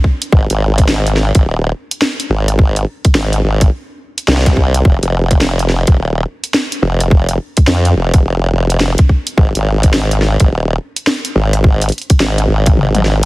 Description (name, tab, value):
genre	glitch hop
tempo	106 BPM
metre	4/4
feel	swing 63% on 16ths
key	unclear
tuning	A4 = 440 Hz
part	electronic kick drum	drums	0.0-12.8 s	none	-9 LUFS	equal	none
part	drum and bass drum kit	drums	0.2-13.3 s	hi-hat, rim click, snare drum, toms	-17 LUFS	equal	none
part	formant-sweep wobble bass	bass	0.3-13.3 s	Eb1 to F2	-12 LUFS	equal	chorus, tube saturation
room	little or no reverb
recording	heavily compressed radio sound, multiband compression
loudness	-11 LUFS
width	side -21 dB against mid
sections	0.0-13.3 A section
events	drum fill 12.8-13.3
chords	none